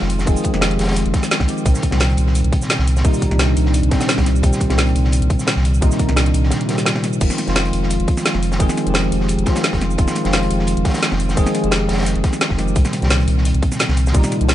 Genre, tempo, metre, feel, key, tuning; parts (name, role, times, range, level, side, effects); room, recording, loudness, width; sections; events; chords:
liquid drum and bass; 173 BPM; 4/4; straight; A4 = 440 Hz
bell-like tine electric piano; accompaniment; 0.0-14.5 s; Bb2 to Ab4; -19 LUFS; equal; analog chorus, ping-pong delay
warm sub bass; bass; 0.0-14.5 s; F1 to C2; -18 LUFS; equal
crunchy breakbeat drum kit; drums; 0.0-14.5 s; hi-hat, snare drum; -28 LUFS; equal; high-pass filter on hats, high-pass filter on snare, high-pass filter on room
garage drum kit; drums; 0.1-14.5 s; cabasa, crash cymbal, hi-hat, snare drum; -22 LUFS; equal
electronic kick drum; drums; 0.3-14.2 s; -18 LUFS; equal
little or no reverb; nothing above 10.7 kHz; -15 LUFS; side -13 dB against mid
0.0-7.2 A section; 7.2-14.5 A section
drop 0.0-7.2, 7.2-14.5; break 6.5-7.2
0.0 Fm7; 1.7 Cm7; 7.2 Fm7; 12.8 Cm7